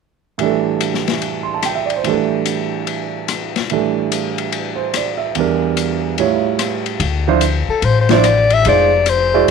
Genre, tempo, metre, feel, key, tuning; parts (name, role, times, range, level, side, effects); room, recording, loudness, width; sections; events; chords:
jazz, small-group swing and bop; 145 BPM; 4/4; swing 65% on 8ths; A4 = 440 Hz
warm concert grand piano; accompaniment; 0.4-9.5 s; E2 to C6; -18 LUFS; right 10 dB
open jazz drum kit; drums; 0.4-9.5 s; hi-hat, ride cymbal, rim click, snare drum; -22 LUFS; left 12 dB
upright bass; bass; 7.0-9.5 s; F1 to D2; -17 LUFS; left 2 dB
mellow soprano saxophone; melody; 7.7-9.5 s; A4 to E5; -14 LUFS; left 6 dB
light reverb, studio reverb; 1960s-style stereo with parts hard left and right; -14 LUFS; side -5 dB against mid
0.4-7.0 A section; 7.0-9.5 B section
0.4 A7sus4; 5.4 Em7b5; 6.2 A7b13; 7.0 Dm9; 8.7 Fm7